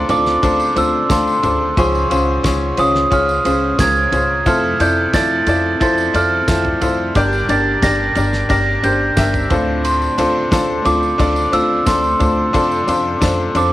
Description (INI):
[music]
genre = piano-driven pop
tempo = 89 BPM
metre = 4/4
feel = straight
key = unclear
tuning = A4 = 440 Hz
[part]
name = glockenspiel with rubber mallets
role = melody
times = 0.0-13.7 s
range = C6 to Bb6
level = -17 LUFS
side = right 2 dB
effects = cassette tape
[part]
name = bright upright piano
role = accompaniment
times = 0.0-13.7 s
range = G2 to E5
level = -19 LUFS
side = left 3 dB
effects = cassette tape, plate reverb
[part]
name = fingerpicked steel-string acoustic guitar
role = riff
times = 0.0-13.7 s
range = Db3 to D5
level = -24 LUFS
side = right 3 dB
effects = cassette tape
[part]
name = upright bass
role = bass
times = 0.0-13.7 s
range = G1 to F2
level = -22 LUFS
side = equal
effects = none
[part]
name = damped 70s drum kit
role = drums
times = 0.1-13.7 s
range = kick drum, ride cymbal, snare drum, toms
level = -22 LUFS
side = equal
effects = cassette tape
[part]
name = tambourine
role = percussion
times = 0.1-13.7 s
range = none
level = -35 LUFS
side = right 5 dB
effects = none
[sound]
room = light reverb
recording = home recording on cassette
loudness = -13 LUFS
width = side -15 dB against mid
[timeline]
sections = 0.0-13.7 A section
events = none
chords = 0.0 Dm7; 1.8 Dbmaj7; 4.5 Fmaj7; 7.2 Gm; 9.5 Dm7; 12.5 F6